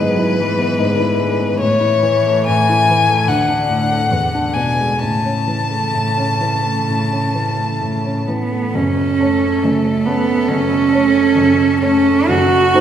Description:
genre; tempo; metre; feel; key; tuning
classical, slow romantic movement for piano trio; 61-76 BPM; 4/4; rubato; A major, F# minor from 8.7 s; A4 = 440 Hz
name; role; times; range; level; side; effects
rich violin; melody; 0.0-12.8 s; A4 to A5; -19 LUFS; left 4 dB; none
warm cello; second line; 0.0-12.8 s; C#3 to F#4; -18 LUFS; right 4 dB; none
warm baby grand piano; accompaniment; 0.0-12.8 s; F#1 to C#5; -18 LUFS; left 1 dB; none
room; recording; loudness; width
wet scoring stage reverb, RT60 1.6 s; heard from further back in the room; -13 LUFS; side -9 dB against mid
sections
0.0-8.7 A section; 8.7-12.8 B section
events
none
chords
0.0 E7/G#; 1.6 A; 3.3 D; 4.1 E9; 5.0 A; 8.7 F#m; 12.3 F#m6

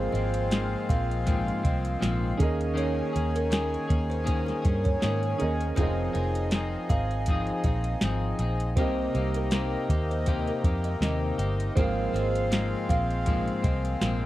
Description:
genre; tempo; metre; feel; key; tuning
indie pop, bedroom pop; 80 BPM; 4/4; swing 55% on 16ths; F minor; A4 = 439 Hz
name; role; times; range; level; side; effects
buzzing kalimba; second line; 0.0-14.2 s; Bb4 to F5; -34 LUFS; right 2 dB; lush chorus, tape echo
clean electric guitar; accompaniment; 0.0-14.3 s; Ab2 to Ab4; -32 LUFS; left 3 dB; wide subtle chorus, warbly pitch drift
clear upright piano; accompaniment; 0.0-14.3 s; C4 to F5; -35 LUFS; right 5 dB; cassette tape
accordion; sustained chords; 0.0-14.3 s; C3 to Ab4; -35 LUFS; left 2 dB; none
vintage muted fingered electric bass; bass; 0.0-14.3 s; F1 to Ab2; -29 LUFS; equal; none
soft vintage rhythm box; drums; 0.1-14.2 s; hi-hat, kick drum, snare drum; -27 LUFS; equal; overdrive
room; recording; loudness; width
little or no reverb; dry, close 1970s-style studio recording; -24 LUFS; side -15 dB against mid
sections
0.0-14.3 A section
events
none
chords
0.0 Ab69; 2.4 Eb7sus4; 5.8 Fm7; 8.8 Cm7; 11.8 Ab69

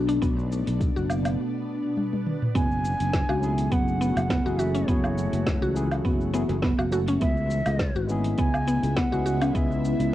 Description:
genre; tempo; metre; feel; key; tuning
organic downtempo; 103 BPM; 4/4; swing 54% on 16ths; unclear; A4 = 440 Hz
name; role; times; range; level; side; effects
ethereal airy pad; sustained chords; 0.0-10.1 s; B2 to F#4; -31 LUFS; left 1 dB; ensemble chorus, built-in reverb, phaser, vintage 12-bit sampler grit, sidechain pumping, cassette tape
mallet-like synth pluck; arpeggios; 0.0-10.1 s; B3 to F#4; -29 LUFS; equal; chorus, cassette tape, analog delay
sustaining fretless electric bass; bass; 0.0-10.1 s; F#1 to C#2; -27 LUFS; equal; lush chorus, sidechain pumping
afro-pop drum kit; drums; 0.1-10.1 s; cabasa, hi-hat, snare drum, toms, woodblock; -31 LUFS; equal; cassette tape
electronic kick drum; drums; 0.2-9.7 s; none; -27 LUFS; equal; cassette tape
barky tine electric piano; accompaniment; 2.5-10.1 s; F#3 to A4; -33 LUFS; left 1 dB; sidechain pumping, cassette tape, analog delay
bansuri; melody; 2.6-10.1 s; C#5 to G#5; -32 LUFS; right 1 dB; cassette tape, tape echo, plate reverb
room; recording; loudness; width
moderate studio reverb, RT60 0.6 s; home recording on cassette; -22 LUFS; side -14 dB against mid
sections
0.0-2.6 A section; 2.6-10.1 B section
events
break 1.4-2.6; drum fill 2.0-2.6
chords
0.0 Bm7; 2.6 F#m7; 7.2 C#m7

